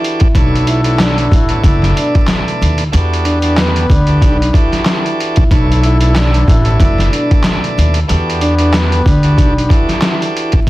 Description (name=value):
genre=hip hop, boom-bap hip-hop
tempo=93 BPM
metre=4/4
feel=swing 57% on 16ths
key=unclear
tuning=A4 = 440 Hz
part: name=vibraphone with medium mallets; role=melody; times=0.0-10.6 s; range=B3 to E5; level=-19 LUFS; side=equal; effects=ping-pong delay
part: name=bright tonewheel organ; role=accompaniment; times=0.0-10.7 s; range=B2 to D5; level=-20 LUFS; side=right 2 dB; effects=overdrive, stopped rotary speaker, cassette tape
part: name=trip hop sampler-style drum kit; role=drums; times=0.0-10.7 s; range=handclaps, hi-hat, kick drum, snare drum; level=-13 LUFS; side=equal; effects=none
part: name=muted trumpet section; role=stabs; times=0.3-10.3 s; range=B3 to B4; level=-24 LUFS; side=left 3 dB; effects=ping-pong delay
part: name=upright bass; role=bass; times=0.4-10.7 s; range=F#1 to E2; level=-13 LUFS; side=equal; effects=none
room=light reverb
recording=dense, heavily limited modern master, vinyl crackle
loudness=-10 LUFS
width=side -17 dB against mid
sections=0.0-10.7 A section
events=break 0.0-0.3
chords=0.3 Bm11; 2.9 Em11; 5.5 Bm11; 8.1 Em11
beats=| 0.35 0.99 1.64 2.28 | 2.93 3.57 4.22 4.86 | 5.51 6.16 6.80 7.45 | 8.09 8.73 9.38 10.03 | 10.67